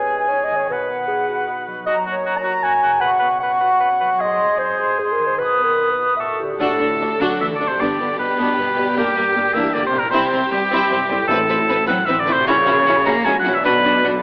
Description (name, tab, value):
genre	cinematic, heroic adventure film score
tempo	153 BPM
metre	3/4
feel	straight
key	D mixolydian from 6.6 s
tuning	A4 = 441 Hz
part	clear oboe	second line	0.0-14.1 s	F#4 to A#5	-22 LUFS	equal	none
part	dark clarinet	second line	0.0-6.6 s	G#4 to A#5	-22 LUFS	equal	none
part	small flute group	second line	0.0-6.4 s	F#5 to D#6	-25 LUFS	equal	none
part	concert harp	arpeggios	0.0-14.2 s	F#2 to E5	-31 LUFS	equal	none
part	rich symphonic violin section	melody	6.6-14.1 s	F#4 to B4	-28 LUFS	equal	none
part	warm symphonic violin section	second line	6.6-14.1 s	G3 to F#4	-28 LUFS	equal	none
part	clear symphonic viola section	accompaniment	6.6-14.1 s	Bb3 to D4	-27 LUFS	equal	none
part	rich symphonic double bass section	bass	6.6-14.2 s	G1 to D2	-34 LUFS	equal	none
part	warm symphonic cello section	bass	6.6-14.2 s	G2 to A#3	-27 LUFS	equal	none
part	timpani	percussion	11.3-11.8 s	A2	-33 LUFS	equal	none
room	wet scoring stage reverb, RT60 1.9 s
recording	AM radio sound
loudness	-18 LUFS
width	mono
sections	0.0-6.6 A section; 6.6-14.2 B section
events	none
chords	0.0 G#m; 0.7 B; 1.9 F#; 3.0 Bsus2; 4.2 G#; 5.4 B; 6.2 A7; 6.6 D; 7.8 G; 9.0 Gm; 10.1 C; 11.3 Amadd9; 12.5 F#7/A#; 13.6 Bm